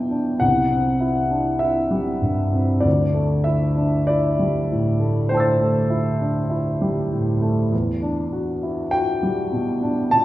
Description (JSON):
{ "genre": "classical, impressionist solo piano", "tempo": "50 BPM", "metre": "4/4", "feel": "rubato", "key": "unclear", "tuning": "A4 = 440 Hz", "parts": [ { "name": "warm grand piano", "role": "solo", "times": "0.0-10.2 s", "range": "C2 to A6", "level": "-18 LUFS", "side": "equal", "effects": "none" } ], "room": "wet recital hall reverb, RT60 1.4 s", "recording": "heard from further back in the room", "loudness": "-18 LUFS", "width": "side -15 dB against mid", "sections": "0.0-10.2 A section", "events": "none", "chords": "0.4 C; 2.9 D9sus4; 7.7 Em9" }